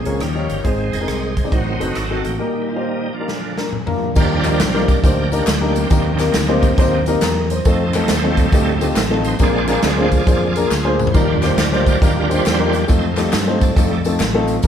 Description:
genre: uptempo gospel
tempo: 137 BPM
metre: 4/4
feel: swing 66% on 8ths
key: Eb major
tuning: A4 = 440 Hz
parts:
  - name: warm upright piano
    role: accompaniment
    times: 0.0-14.7 s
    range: Ab2 to D5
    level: -20 LUFS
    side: left 3 dB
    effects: none
  - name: bright tonewheel organ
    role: sustained chords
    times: 0.0-14.7 s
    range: Db3 to Eb5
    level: -23 LUFS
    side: right 4 dB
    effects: slow rotary speaker, chorus vibrato
  - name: fingered electric bass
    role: bass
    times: 0.1-14.7 s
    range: F1 to G2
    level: -21 LUFS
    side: equal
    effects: none
  - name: swinging big-band drum kit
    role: drums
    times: 0.1-14.7 s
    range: crash cymbal, hi-hat, kick drum, rim click, snare drum, toms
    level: -18 LUFS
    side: equal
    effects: none
  - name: tambourine and handclaps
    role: percussion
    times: 4.2-14.7 s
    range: none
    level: -30 LUFS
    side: left 4 dB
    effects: none
room: moderate large studio reverb, RT60 1.1 s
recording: band playing live in one room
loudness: -14 LUFS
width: side -9 dB against mid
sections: 0.0-4.2 A section; 4.2-14.7 B section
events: tonewheel organ solo 0.0-4.2, 4.2-14.7; break 2.4-4.2; drum fill 3.3-4.2, 10.7-11.1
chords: 0.2 Eb9; 0.7 Ab; 1.5 Adim7; 2.4 Eb/Bb; 3.3 Bb; 4.2 Ebmaj7; 5.9 Cm7; 7.7 F7; 9.4 Bb7; 11.1 Ebmaj7; 12.9 F7

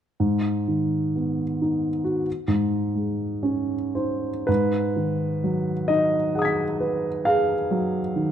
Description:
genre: classical, impressionist solo piano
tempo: 36-47 BPM (dotted quarters)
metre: 9/8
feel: rubato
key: G# dorian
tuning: A4 = 440 Hz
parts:
  - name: warm grand piano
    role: solo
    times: 0.2-8.3 s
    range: G#2 to B6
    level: -22 LUFS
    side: equal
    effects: none
room: moderate large studio reverb, RT60 1.2 s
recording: dark, warm production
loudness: -22 LUFS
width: side -9 dB against mid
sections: 0.2-4.5 A section; 4.5-8.3 B section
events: none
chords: 0.2 G#m; 2.3 G#add11; 4.5 G#m7

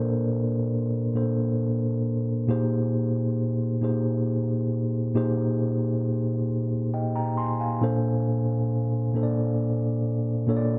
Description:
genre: R&B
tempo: 45 BPM (dotted quarters)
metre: 6/8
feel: straight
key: Bb major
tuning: A4 = 441 Hz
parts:
  - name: mellow tine electric piano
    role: solo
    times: 0.0-10.8 s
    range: Bb2 to C6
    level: -26 LUFS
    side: equal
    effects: none
room: little or no reverb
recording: dry, close 1970s-style studio recording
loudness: -26 LUFS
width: mono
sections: 0.0-7.8 A section; 7.8-10.8 B section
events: none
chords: 0.0 Bbmaj9; 2.5 Bb13sus4; 7.8 Bbmaj9

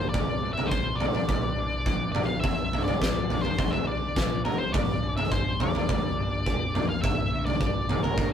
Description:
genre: quiet-loud alternative rock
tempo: 104 BPM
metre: 4/4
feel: straight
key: unclear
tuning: A4 = 440 Hz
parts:
  - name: octave-fuzz lead guitar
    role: melody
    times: 0.0-8.3 s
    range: Bb4 to F5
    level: -31 LUFS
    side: left 2 dB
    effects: distortion
  - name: electric guitar through a small old amp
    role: arpeggios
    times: 0.0-8.3 s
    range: G2 to D4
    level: -38 LUFS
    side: right 2 dB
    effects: none
  - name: growling picked electric bass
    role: bass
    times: 0.0-8.3 s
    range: F1 to G2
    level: -35 LUFS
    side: equal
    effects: overdrive
  - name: huge arena drum kit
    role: drums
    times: 0.1-8.3 s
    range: kick drum, snare drum, toms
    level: -26 LUFS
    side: equal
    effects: none
room: moderate studio ambience, RT60 0.5 s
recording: rough rehearsal-room recording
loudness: -24 LUFS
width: side -8 dB against mid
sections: 0.0-8.3 A section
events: none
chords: 0.1 Cadd9; 4.7 Gm

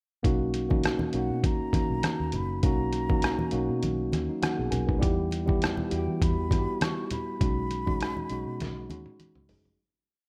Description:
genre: lush 1970s-style soul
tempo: 100 BPM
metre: 4/4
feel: swing 54% on 16ths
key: B major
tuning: A4 = 440 Hz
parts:
  - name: tine electric piano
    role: accompaniment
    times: 0.2-9.8 s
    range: F#3 to G#5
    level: -32 LUFS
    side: equal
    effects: none
  - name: vintage muted fingered electric bass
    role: bass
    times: 0.2-9.8 s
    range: F#1 to E3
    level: -35 LUFS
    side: equal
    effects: none
  - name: trip hop sampler-style drum kit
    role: drums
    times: 0.2-9.8 s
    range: hi-hat, kick drum, rim click, snare drum, toms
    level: -31 LUFS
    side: equal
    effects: none
  - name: congas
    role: percussion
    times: 0.5-9.6 s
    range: none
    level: -37 LUFS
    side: equal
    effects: none
  - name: breathy mellow jazz flute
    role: melody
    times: 1.2-9.5 s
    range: F#5 to C#6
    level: -39 LUFS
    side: equal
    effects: none
room: light reverb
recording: rough home demo mix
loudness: -28 LUFS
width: mono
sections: 0.2-9.8 A section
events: tine electric piano fill 4.1-5.0; fade-out 7.4-9.8; drum fill 8.6-9.8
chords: 0.2 Bmaj7; 5.0 Em; 7.4 B69

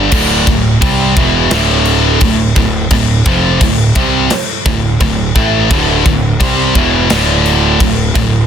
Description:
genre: heavy metal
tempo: 86 BPM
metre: 4/4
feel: straight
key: D minor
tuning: A4 = 440 Hz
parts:
  - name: heavy high-gain guitar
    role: riff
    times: 0.0-8.4 s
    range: D2 to C4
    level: -15 LUFS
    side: right 9 dB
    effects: distortion
  - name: scooped high-gain guitar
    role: riff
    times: 0.0-8.4 s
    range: D2 to C4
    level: -14 LUFS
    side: left 10 dB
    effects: distortion
  - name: fuzz picked electric bass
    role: bass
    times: 0.0-8.5 s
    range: D1 to C2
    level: -16 LUFS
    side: equal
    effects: overdrive
  - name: tight metal drum kit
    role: drums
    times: 0.1-8.3 s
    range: crash cymbal, kick drum, snare drum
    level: -15 LUFS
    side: equal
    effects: none
room: little or no reverb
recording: dense, heavily limited modern master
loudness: -9 LUFS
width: side -8 dB against mid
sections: 0.1-8.5 A section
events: half time 0.1-8.5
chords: 0.1 Dm

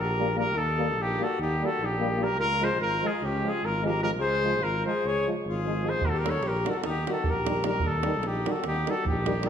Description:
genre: balkan folk, Balkan brass band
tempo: 298 BPM (eighths)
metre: 9/8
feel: straight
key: unclear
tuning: A4 = 440 Hz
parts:
  - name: mellow trumpet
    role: melody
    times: 0.0-9.5 s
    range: G4 to C#5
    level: -28 LUFS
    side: equal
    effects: none
  - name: clear alto saxophone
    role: second line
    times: 0.0-9.5 s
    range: C#4 to A4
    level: -33 LUFS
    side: left 4 dB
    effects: none
  - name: dark tuba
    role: bass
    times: 0.0-9.5 s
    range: G#1 to Eb2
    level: -32 LUFS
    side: equal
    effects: none
  - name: clear euphonium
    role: accompaniment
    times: 0.2-9.5 s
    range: Eb3 to G3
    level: -36 LUFS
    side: right 6 dB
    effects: none
  - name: warm euphonium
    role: accompaniment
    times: 0.2-9.5 s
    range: G3 to Bb3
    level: -35 LUFS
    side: left 6 dB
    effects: none
  - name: davul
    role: percussion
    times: 6.0-9.5 s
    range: none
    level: -32 LUFS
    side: right 4 dB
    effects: none
room: wet recital hall reverb, RT60 1.5 s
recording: none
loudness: -24 LUFS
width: side -8 dB against mid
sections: 0.0-9.5 A section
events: none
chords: 0.0 Eb; 2.4 C#; 6.0 Eb

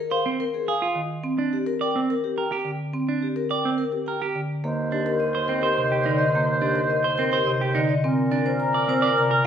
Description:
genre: classical, minimalist pattern music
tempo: 106 BPM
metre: 3/4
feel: straight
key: Eb major from 4.6 s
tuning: A4 = 439 Hz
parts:
  - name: vibraphone with soft mallets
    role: melody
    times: 0.0-9.5 s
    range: G4 to Bb5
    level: -27 LUFS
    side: left 7 dB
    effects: none
  - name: clean electric guitar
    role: arpeggios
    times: 0.1-9.5 s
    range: C4 to D5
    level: -26 LUFS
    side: right 4 dB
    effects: none
  - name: marimba with medium mallets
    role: accompaniment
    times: 1.0-9.4 s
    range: C3 to C4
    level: -27 LUFS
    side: right 1 dB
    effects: none
  - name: warm oboe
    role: second line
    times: 4.6-9.5 s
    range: Bb4 to C5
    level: -27 LUFS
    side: right 2 dB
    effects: none
  - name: warm bassoon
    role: bass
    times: 4.6-9.5 s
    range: Eb2 to Bb2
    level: -27 LUFS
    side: equal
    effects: none
room: wet recital hall reverb, RT60 1.4 s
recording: recorded in a church or concert hall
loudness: -21 LUFS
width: side -8 dB against mid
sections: 0.0-4.6 A section; 4.6-9.5 B section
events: none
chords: 0.0 Bb7sus4; 1.2 Gm; 4.6 Eb6; 8.0 Bb

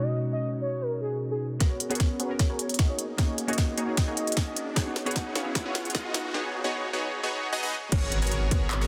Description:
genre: future bass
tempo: 152 BPM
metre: 4/4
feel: half-time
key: unclear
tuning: A4 = 443 Hz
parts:
  - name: warm velvety synth lead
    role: melody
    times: 0.0-8.8 s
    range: G#4 to F#5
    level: -38 LUFS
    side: equal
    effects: chorus, sidechain pumping, dub echo
  - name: glassy digital keys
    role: accompaniment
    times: 0.0-6.2 s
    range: B2 to A#4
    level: -35 LUFS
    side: equal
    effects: chorus, sidechain pumping
  - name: supersaw stab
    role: riff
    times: 1.6-8.9 s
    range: A#3 to D#5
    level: -34 LUFS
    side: equal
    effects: sidechain pumping, low-pass filter
  - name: electronic kick drum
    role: drums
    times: 1.6-8.6 s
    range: none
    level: -28 LUFS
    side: equal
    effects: none
  - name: trap drum kit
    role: drums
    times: 1.6-8.8 s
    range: crash cymbal, handclaps, hi-hat, snare drum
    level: -35 LUFS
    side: equal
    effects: high-pass filter on snare, low-pass filter on snare, high-pass filter on hats, low-pass filter on hats, high-pass filter on cymbals, low-pass filter on cymbals
  - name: riser and impact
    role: sound effects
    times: 3.0-8.9 s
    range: none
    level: -41 LUFS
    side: equal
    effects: none
  - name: saturated sub bass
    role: bass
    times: 7.9-8.9 s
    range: G#1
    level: -31 LUFS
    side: equal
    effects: sidechain pumping
room: light reverb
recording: dense, heavily limited modern master, high-pass filter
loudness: -28 LUFS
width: mono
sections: 0.0-1.6 A section; 1.6-7.9 B section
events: build-up 1.6-7.9; drum fill 1.6-6.3; filter sweep on supersaw synth 1.6-7.9; filter sweep 1.6-7.9; riser 3.0-6.3; impact 7.9-8.9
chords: 0.0 B69; 1.6 G#m11; 3.0 F#69; 4.8 B69; 7.9 G#m11

